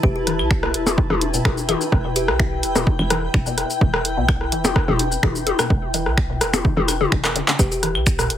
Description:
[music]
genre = minimal techno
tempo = 127 BPM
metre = 4/4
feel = straight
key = E minor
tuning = A4 = 439 Hz
[part]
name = kalimba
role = melody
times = 0.0-2.5, 7.6-7.8 s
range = G4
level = -28 LUFS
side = left 1 dB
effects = tape echo
[part]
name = hollow knocking FM bass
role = bass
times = 0.0-8.4 s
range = E1 to B1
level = -26 LUFS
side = equal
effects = sidechain pumping
[part]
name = electronic kick drum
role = drums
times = 0.0-8.2 s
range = none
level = -20 LUFS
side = equal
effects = overdrive
[part]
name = granular cloud pad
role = texture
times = 0.0-7.6 s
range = E4 to A5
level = -27 LUFS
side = left 1 dB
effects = built-in reverb, sidechain pumping
[part]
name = resonant blip pluck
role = riff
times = 0.3-8.2 s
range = B2 to E3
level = -28 LUFS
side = left 3 dB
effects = phaser, analog chorus, sidechain pumping, ping-pong delay
[part]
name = punchy analog drum machine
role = drums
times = 0.3-8.4 s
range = finger snaps, handclaps, hi-hat, shaker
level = -23 LUFS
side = equal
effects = overdrive
[part]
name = minimal click drum kit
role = percussion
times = 0.3-8.3 s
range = claves, percussion blips, rim click, toms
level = -22 LUFS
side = left 2 dB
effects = overdrive, tape echo
[sound]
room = light reverb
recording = heavily compressed radio sound, multiband compression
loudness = -17 LUFS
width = side -10 dB against mid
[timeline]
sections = 0.0-7.6 A section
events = drum fill 7.2-7.6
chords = 0.0 Esus4; 7.6 E5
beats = | 0.03 0.51 0.98 1.45 | 1.92 2.40 2.87 3.34 | 3.81 4.29 4.76 5.23 | 5.70 6.18 6.65 7.12 | 7.59 8.06

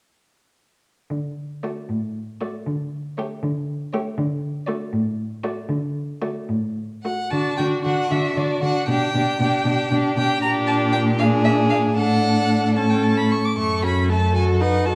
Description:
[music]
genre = quick classical-period movement for string quartet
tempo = 77 BPM (dotted quarters)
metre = 6/8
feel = rubato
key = D major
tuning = A4 = 436 Hz
[part]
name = rich cello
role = bass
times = 1.1-14.9 s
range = F#2 to D3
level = -25 LUFS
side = equal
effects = none
[part]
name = warm violin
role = melody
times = 1.6-14.9 s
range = C#5 to D6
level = -28 LUFS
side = equal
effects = none
[part]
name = clear violin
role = second line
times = 1.6-14.9 s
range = F#4 to B4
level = -28 LUFS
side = equal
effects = none
[part]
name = rich viola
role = accompaniment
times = 1.6-14.9 s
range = A3 to F#4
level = -27 LUFS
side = equal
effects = none
[sound]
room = wet recital hall reverb, RT60 1.6 s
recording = none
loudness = -22 LUFS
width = mono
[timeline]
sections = 1.1-7.3 A section; 7.3-14.9 B section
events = none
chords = 1.1 D; 2.7 A7/D; 4.2 D; 8.9 G/B; 10.4 Gm/Bb; 12.0 D/A; 12.7 A; 13.6 F#m; 14.3 B7/F#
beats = | 1.11 1.90 | 2.67 3.43 | 4.18 4.93 | 5.70 6.49 | 7.32 8.10 | 8.88 9.66 | 10.42 11.18 | 11.96 12.75 | 13.56 14.34

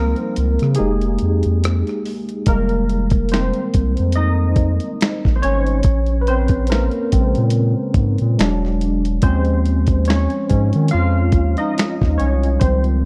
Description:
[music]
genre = R&B, neo-soul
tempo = 71 BPM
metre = 4/4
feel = swing 56% on 16ths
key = F minor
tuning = A4 = 435 Hz
[part]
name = barky tine electric piano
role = accompaniment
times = 0.0-13.1 s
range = Db3 to F5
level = -22 LUFS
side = equal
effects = overdrive, ensemble chorus
[part]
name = round analog bass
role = bass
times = 0.0-13.1 s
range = E1 to Eb3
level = -20 LUFS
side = equal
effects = none
[part]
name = dusty soul sampler-style drum kit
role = drums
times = 0.2-13.0 s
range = finger snaps, hi-hat, kick drum, rim click, snare drum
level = -20 LUFS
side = equal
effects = none
[sound]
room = little or no reverb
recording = dry, close 1970s-style studio recording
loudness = -18 LUFS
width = mono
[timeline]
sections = 0.0-2.5 A section; 2.5-13.1 B section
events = break 0.0-2.5; tine electric piano solo 0.0-2.5, 2.5-13.1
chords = 0.0 Dbmaj9#11; 0.8 Fm11; 5.8 Bbm9; 8.4 E9; 9.2 Eb9sus4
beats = 0.78 1.62 | 2.47 3.31 4.16 5.00 | 5.85 6.69 7.54 8.38 | 9.23 10.07 10.92 11.76 | 12.61

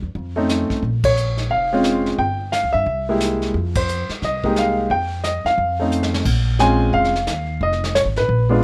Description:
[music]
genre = jazz piano trio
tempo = 177 BPM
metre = 4/4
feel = swing 63% on 8ths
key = F minor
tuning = A4 = 440 Hz
[part]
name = upright bass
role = bass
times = 0.0-8.6 s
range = F1 to G2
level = -25 LUFS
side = equal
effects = none
[part]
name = vintage brush drum kit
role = drums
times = 0.2-8.6 s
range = brushed snare drum, crash cymbal, hi-hat, kick drum, ride cymbal, snare drum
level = -30 LUFS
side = equal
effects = none
[part]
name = warm concert grand piano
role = melody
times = 0.4-8.6 s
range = Ab3 to Ab5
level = -21 LUFS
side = equal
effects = plate reverb
[sound]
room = light reverb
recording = rough home demo mix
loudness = -20 LUFS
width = mono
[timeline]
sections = 0.0-6.3 A section; 6.3-8.6 B section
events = band accent 1.0, 3.7; drum fill 5.9-6.3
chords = 0.1 F7b13; 0.8 Bbm7; 2.2 C#dim/G; 2.9 C7b13; 3.5 Fm11; 5.6 F7b13; 6.3 Bbm9; 7.6 F7#9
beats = 0.15 0.49 | 0.83 1.17 1.50 1.84 | 2.18 2.52 2.86 3.20 | 3.54 3.88 4.22 4.56 | 4.90 5.24 5.58 5.92 | 6.25 6.59 6.93 7.27 | 7.61 7.95 8.29 8.63

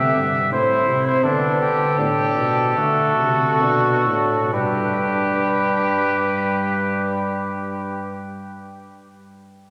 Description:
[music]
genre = classical, imitative canzona for brass ensemble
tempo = 63-88 BPM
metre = 4/4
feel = straight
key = G major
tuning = A4 = 440 Hz
[part]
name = mellow trumpet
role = melody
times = 0.0-8.2 s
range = A4 to E5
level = -24 LUFS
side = equal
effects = none
[part]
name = clear trumpet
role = second line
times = 0.0-8.2 s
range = D4 to G4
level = -26 LUFS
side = equal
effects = none
[part]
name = clear euphonium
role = accompaniment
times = 0.0-8.2 s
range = A3 to D4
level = -28 LUFS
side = equal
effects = none
[part]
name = warm tuba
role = bass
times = 0.0-8.2 s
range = G2 to D3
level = -27 LUFS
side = equal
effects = none
[sound]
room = wet cathedral reverb, RT60 4.2 s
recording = none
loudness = -20 LUFS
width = mono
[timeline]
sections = 0.0-4.5 A section; 4.5-8.3 B section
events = slowing down 0.0-4.5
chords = 0.0 Am; 1.2 G/D; 2.8 D; 4.5 G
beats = 0.53 | 1.24 1.99 2.77 3.62 | 4.53 5.47 6.42 7.36

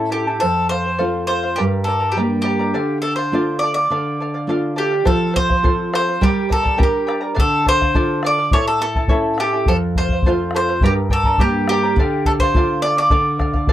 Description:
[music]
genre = andean folk, Andean ensemble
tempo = 104 BPM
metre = 2/4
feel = straight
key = D minor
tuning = A4 = 441 Hz
[part]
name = mandolin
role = melody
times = 0.0-13.7 s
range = G4 to D5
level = -19 LUFS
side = equal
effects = none
[part]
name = charango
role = accompaniment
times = 0.0-13.7 s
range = E4 to Bb5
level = -24 LUFS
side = equal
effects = none
[part]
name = nylon-string guitar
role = accompaniment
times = 0.0-13.7 s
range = F2 to Bb4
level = -21 LUFS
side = right 1 dB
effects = none
[part]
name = bombo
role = percussion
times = 5.1-13.7 s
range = none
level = -18 LUFS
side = equal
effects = none
[sound]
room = light reverb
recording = dry, close 1970s-style studio recording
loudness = -15 LUFS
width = side -12 dB against mid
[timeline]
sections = 0.0-5.1 A section; 5.1-13.7 A section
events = none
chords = 0.4 F; 1.6 Gm; 2.7 Dm; 5.1 F; 6.2 Gm; 7.4 Dm; 8.5 A; 9.7 F; 10.8 Gm; 12.0 Dm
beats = | 0.41 0.99 | 1.57 2.16 | 2.74 3.32 | 3.90 4.48 | 5.06 5.63 | 6.21 6.79 | 7.37 7.95 | 8.52 9.10 | 9.67 10.25 | 10.82 11.39 | 11.97 12.54 | 13.11 13.68

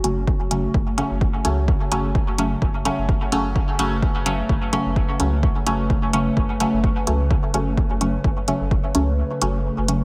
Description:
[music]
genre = dub techno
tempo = 128 BPM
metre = 4/4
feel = straight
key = F# minor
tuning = A4 = 444 Hz
[part]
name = warbly tape-like pad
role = sustained chords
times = 0.0-10.0 s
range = C#3 to B4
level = -31 LUFS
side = equal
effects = chorus, built-in reverb, sidechain pumping
[part]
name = filtered dub chord stab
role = stabs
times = 0.0-10.0 s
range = C#3 to C#4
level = -26 LUFS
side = equal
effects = chorus, phaser, sidechain pumping, dub echo
[part]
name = soft dub sub bass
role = bass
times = 0.0-10.0 s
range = F#1 to C#2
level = -28 LUFS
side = equal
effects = sidechain pumping
[part]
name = electronic hi-hat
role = drums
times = 0.0-10.0 s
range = none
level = -27 LUFS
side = equal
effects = none
[part]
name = electronic kick drum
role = drums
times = 0.3-8.8 s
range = none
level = -24 LUFS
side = equal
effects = none
[sound]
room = moderate echo chamber reverb, RT60 1.8 s, digital ambience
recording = none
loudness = -21 LUFS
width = mono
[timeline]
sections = 0.0-10.0 A section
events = kick drops out 9.2-10.0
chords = 0.0 F#m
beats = 0.28 0.74 1.21 | 1.68 2.15 2.62 3.09 | 3.56 4.03 4.50 4.96 | 5.43 5.90 6.37 6.84 | 7.31 7.78 8.24 8.71 | 9.18 9.65

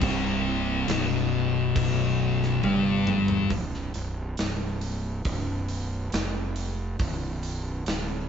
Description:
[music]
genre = stoner and doom metal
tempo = 69 BPM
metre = 4/4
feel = straight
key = unclear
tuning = A4 = 443 Hz
[part]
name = thick fuzz guitar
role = riff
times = 0.0-3.5 s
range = B1 to G3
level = -24 LUFS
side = left 6 dB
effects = distortion
[part]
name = thick fuzz guitar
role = riff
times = 0.0-3.5 s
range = B1 to G3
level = -30 LUFS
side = right 10 dB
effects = distortion
[part]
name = fuzz fingered electric bass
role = bass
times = 0.0-8.3 s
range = B0 to G1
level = -30 LUFS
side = right 1 dB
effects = overdrive
[part]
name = big rock drum kit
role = drums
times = 0.0-8.1 s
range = crash cymbal, hi-hat, kick drum, snare drum, toms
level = -31 LUFS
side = equal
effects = none
[sound]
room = moderate studio reverb, RT60 0.7 s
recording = band playing live in one room, nothing above 7.9 kHz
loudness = -24 LUFS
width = side -7 dB against mid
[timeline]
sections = 0.0-3.5 A section; 3.5-8.3 B section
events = drum fill 2.6-3.5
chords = none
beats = | 0.03 0.89 1.76 2.63 | 3.50 4.38 5.25 6.12 | 6.99 7.87

